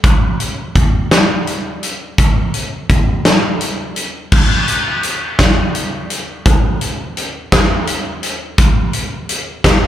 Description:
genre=rock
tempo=56 BPM (dotted quarters)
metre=6/8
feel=straight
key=none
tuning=none
part: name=huge arena drum kit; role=drums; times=0.0-9.8 s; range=crash cymbal, hi-hat, kick drum, snare drum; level=-13 LUFS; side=equal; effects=none
room=light reverb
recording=live gig heard through the venue's PA, club reverb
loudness=-13 LUFS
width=side -11 dB against mid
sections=0.0-4.3 A section; 4.3-9.9 B section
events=none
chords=none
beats=| 0.04 1.11 | 2.18 3.25 | 4.32 5.39 | 6.46 7.52 | 8.59 9.64

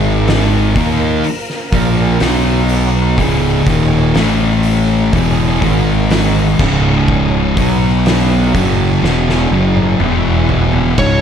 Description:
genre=stoner and doom metal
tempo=62 BPM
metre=4/4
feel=straight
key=C# dorian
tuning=A4 = 440 Hz
part: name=tonewheel organ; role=sustained chords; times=0.0-11.2 s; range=G#3 to F#5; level=-26 LUFS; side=equal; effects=slow rotary speaker, chorus vibrato
part: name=fuzz guitar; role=riff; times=0.0-11.2 s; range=C#2 to D#4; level=-16 LUFS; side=right 8 dB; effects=distortion
part: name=thick fuzz guitar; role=riff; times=0.0-11.2 s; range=C#2 to D#4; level=-16 LUFS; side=left 10 dB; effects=distortion
part: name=fuzz fingered electric bass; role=bass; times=0.0-11.2 s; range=C#1 to D#2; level=-17 LUFS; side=equal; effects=overdrive
part: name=oversized low-tuned drum kit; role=drums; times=0.3-11.2 s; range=crash cymbal, hi-hat, kick drum, ride cymbal, snare drum, toms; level=-18 LUFS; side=equal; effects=none
part: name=fuzz lead guitar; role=melody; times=11.0-11.2 s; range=C#5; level=-14 LUFS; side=right 1 dB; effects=distortion
room=little or no reverb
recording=dark, warm production, faint mains hum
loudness=-11 LUFS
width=side -8 dB against mid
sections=0.0-11.0 A section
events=drum fill 9.0-11.0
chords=0.0 G#5; 0.8 A#5; 2.2 B5; 3.2 C#5; 4.2 A5; 5.1 C#m; 5.6 G#5; 6.6 C#5; 7.6 B5; 8.6 C#m; 10.0 E5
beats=0.28 1.25 2.23 | 3.20 4.17 5.14 6.12 | 7.09 8.06 9.04 10.01 | 10.99

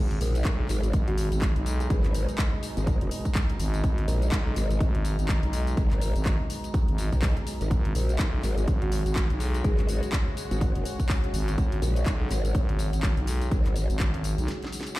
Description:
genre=bass house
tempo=124 BPM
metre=4/4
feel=swing 59% on 16ths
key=unclear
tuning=A4 = 440 Hz
part: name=sweeping resonant pad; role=sustained chords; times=0.0-15.0 s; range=B2 to F#4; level=-36 LUFS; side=right 1 dB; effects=chorus, sidechain pumping
part: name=growling FM bass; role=bass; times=0.0-14.5 s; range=G#1 to B1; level=-27 LUFS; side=equal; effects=tube saturation, sidechain pumping
part: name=warbly tape-like pad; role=texture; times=0.0-15.0 s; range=G#4 to B5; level=-40 LUFS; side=left 2 dB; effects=chorus, built-in reverb, sidechain pumping
part: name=house drum kit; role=drums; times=0.1-15.0 s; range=handclaps, hi-hat, snare drum, tambourine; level=-36 LUFS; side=left 1 dB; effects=overdrive
part: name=growl bass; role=bass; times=0.2-13.9 s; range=F#1 to B1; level=-26 LUFS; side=equal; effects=chorus, overdrive, sidechain pumping
part: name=electronic kick drum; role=drums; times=0.5-14.1 s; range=none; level=-25 LUFS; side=equal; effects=none
part: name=thumb-piano-like synth pluck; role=melody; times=1.1-2.3, 8.8-9.8 s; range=F#4 to B4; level=-36 LUFS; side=equal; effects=chorus, digital delay
room=little or no reverb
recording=played on a big sound system in a bare room, large studio reverb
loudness=-24 LUFS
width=side -18 dB against mid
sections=0.0-15.0 A section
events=break 14.5-15.0; drum fill 14.5-15.0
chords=0.0 F#sus2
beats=0.45 0.94 1.42 | 1.90 2.39 2.87 3.35 | 3.84 4.32 4.81 5.29 | 5.77 6.26 6.74 7.22 | 7.71 8.19 8.68 9.16 | 9.64 10.13 10.61 11.10 | 11.58 12.06 12.55 13.03 | 13.52 14.00 14.48 14.97

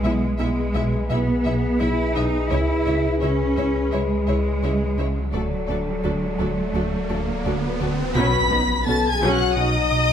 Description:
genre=cinematic, hybrid orchestral and electronic film score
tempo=85 BPM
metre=4/4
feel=straight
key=unclear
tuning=A4 = 437 Hz
part: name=rich chamber violin section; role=melody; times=0.0-10.1 s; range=D5 to B6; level=-29 LUFS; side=left 1 dB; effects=none
part: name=dark symphonic violin section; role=second line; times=0.0-10.1 s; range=A4 to B5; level=-29 LUFS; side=left 5 dB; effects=none
part: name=warm chamber viola section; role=accompaniment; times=0.0-9.5 s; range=E3 to F#4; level=-30 LUFS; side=equal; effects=none
part: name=warm French horn section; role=sustained chords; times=0.0-10.1 s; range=D#4 to D5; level=-27 LUFS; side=left 4 dB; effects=none
part: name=smooth gliding synth bass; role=riff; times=0.0-10.1 s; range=C#2 to B3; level=-28 LUFS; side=right 2 dB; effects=none
part: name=clear symphonic double bass section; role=bass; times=0.0-9.3 s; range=B1 to D2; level=-30 LUFS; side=right 3 dB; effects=none
part: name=pure sine sub bass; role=bass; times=0.0-10.1 s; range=D1 to C#2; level=-28 LUFS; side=equal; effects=none
part: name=rich symphonic cello section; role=bass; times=0.0-9.3 s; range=B2 to E4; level=-26 LUFS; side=right 1 dB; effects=none
part: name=riser and impact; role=sound effects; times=4.9-10.1 s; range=none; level=-31 LUFS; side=right 1 dB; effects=none
room=moderate scoring stage reverb, RT60 1.6 s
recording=none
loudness=-19 LUFS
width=side -8 dB against mid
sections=0.0-8.2 A section; 8.2-10.1 B section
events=riser 4.9-8.2; impact 8.2-10.1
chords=0.0 E/B; 2.5 C#m; 5.3 D; 8.2 Badd9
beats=0.39 1.09 1.80 | 2.51 3.21 3.92 4.62 | 5.33 6.04 6.74 7.45 | 8.15 8.86 9.56

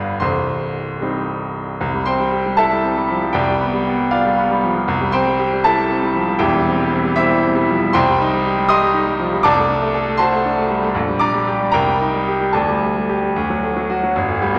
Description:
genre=classical, virtuoso piano study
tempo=72-81 BPM (dotted quarters)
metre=6/8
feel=rubato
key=C major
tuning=A4 = 440 Hz
part: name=clear grand piano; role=solo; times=0.0-14.6 s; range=C1 to Eb6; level=-18 LUFS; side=equal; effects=none
room=wet scoring stage reverb, RT60 1.6 s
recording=none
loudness=-18 LUFS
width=mono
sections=0.0-1.8 A section; 1.8-14.1 B section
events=none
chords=0.2 Cm; 1.8 C; 3.4 G7/C; 4.9 C; 6.4 C/E; 7.9 Cm; 9.4 D7/C; 10.9 Gm/Bb; 11.7 Cm; 12.5 Dsus4; 13.3 D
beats=| 0.21 1.01 | 1.80 2.58 | 3.36 4.12 | 4.88 5.65 | 6.41 7.16 | 7.94 8.69 | 9.43 10.18 | 10.94 11.72 | 12.53 13.35 | 14.15

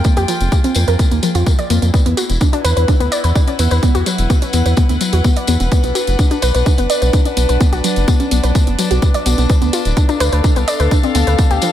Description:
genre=melodic techno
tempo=127 BPM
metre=4/4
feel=straight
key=unclear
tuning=A4 = 440 Hz
part: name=warbly dusty pluck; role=arpeggios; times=0.0-11.7 s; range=F3 to D5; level=-18 LUFS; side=equal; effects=chorus, sidechain pumping, ping-pong delay
part: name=electronic hi-hat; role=drums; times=0.0-11.7 s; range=none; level=-28 LUFS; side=right 5 dB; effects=sidechain pumping on hats
part: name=electronic kick drum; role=drums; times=0.0-11.5 s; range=none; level=-13 LUFS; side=equal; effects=none
part: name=tambourine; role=percussion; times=0.0-11.7 s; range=none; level=-25 LUFS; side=left 5 dB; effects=none
part: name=clear studio string section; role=texture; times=0.0-11.7 s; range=D4 to G5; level=-23 LUFS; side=left 2 dB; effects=sidechain pumping
part: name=round analog bass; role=bass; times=0.2-11.6 s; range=D1 to F2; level=-15 LUFS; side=equal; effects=sidechain pumping
room=light reverb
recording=none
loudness=-12 LUFS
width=side -11 dB against mid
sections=0.0-11.7 A section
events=fade-in on string section 0.0-11.7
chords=0.0 Fmadd9; 1.9 Esus2; 5.7 Bm; 9.5 Dm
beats=| 0.05 0.52 0.99 1.47 | 1.94 2.41 2.88 3.35 | 3.83 4.30 4.77 5.25 | 5.72 6.19 6.66 7.13 | 7.61 8.08 8.55 9.02 | 9.50 9.97 10.44 10.91 | 11.39

